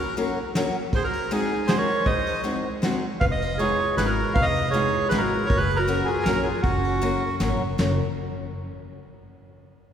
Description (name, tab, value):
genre	musette waltz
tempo	158 BPM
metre	3/4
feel	straight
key	F# major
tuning	A4 = 440 Hz
part	bandoneon	melody	0.0-7.4 s	F#4 to F5	-26 LUFS	right 1 dB	none
part	mellow clarinet	second line	0.0-7.4 s	C#4 to B#4	-29 LUFS	right 3 dB	none
part	picked old ladder-braced acoustic guitar	accompaniment	0.2-8.0 s	F#3 to A#4	-28 LUFS	left 2 dB	none
part	soft brush drum kit	drums	0.2-7.9 s	china cymbal, kick drum, ride cymbal, snare drum	-29 LUFS	equal	none
part	upright bass	bass	3.2-8.0 s	F1 to A#1	-28 LUFS	left 1 dB	none
room	wet church reverb, RT60 3.4 s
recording	recorded in a church or concert hall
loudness	-21 LUFS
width	side -8 dB against mid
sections	0.0-7.8 A section; 7.8-8.9 B section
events	none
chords	0.0 F#; 0.9 G#7; 3.2 Fm7b5; 5.5 F#